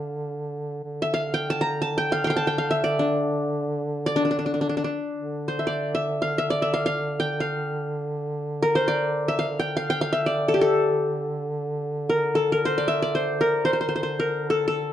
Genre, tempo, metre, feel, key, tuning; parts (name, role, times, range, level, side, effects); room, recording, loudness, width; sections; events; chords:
Turkish makam ensemble; free time; D makam nihavent; A4 = 440 Hz
qanun; melody; 0.0-14.9 s; D4 to Bb5; -22 LUFS; left 1 dB
mellow duduk; drone; 0.0-14.9 s; D3; -29 LUFS; right 2 dB
moderate studio reverb, RT60 0.6 s; dark, warm production; -22 LUFS; side -11 dB against mid
0.0-5.2 A section; 5.2-14.9 A section